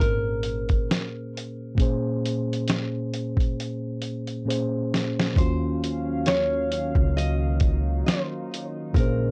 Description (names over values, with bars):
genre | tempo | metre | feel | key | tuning
lo-fi hip hop | 67 BPM | 4/4 | swing 57% on 16ths | unclear | A4 = 440 Hz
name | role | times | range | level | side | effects
nylon-string guitar | melody | 0.0-9.3 s | Bb4 to Eb5 | -32 LUFS | equal | low-pass filter, tape echo
mellow tine electric piano | accompaniment | 0.0-9.3 s | Bb2 to C5 | -31 LUFS | equal | cassette tape, low-pass filter
upright bass | bass | 0.0-9.3 s | Ab1 to Eb2 | -29 LUFS | equal | none
lo-fi sampler-style drum kit | drums | 0.0-9.2 s | hi-hat, kick drum, snare drum | -26 LUFS | equal | vintage 12-bit sampler grit
warbly tape-like pad | sustained chords | 5.6-9.3 s | Db3 to F5 | -36 LUFS | equal | chorus, built-in reverb, low-pass filter
room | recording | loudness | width
little or no reverb | dry, gritty hardware recording | -25 LUFS | mono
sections
0.0-5.4 A section; 5.4-9.3 B section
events
drum fill 3.6-5.4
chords
0.0 Bbm9; 5.4 Ebm9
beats
0.88 | 1.78 2.67 3.57 4.46 | 5.36 6.26 7.15 8.05 | 8.94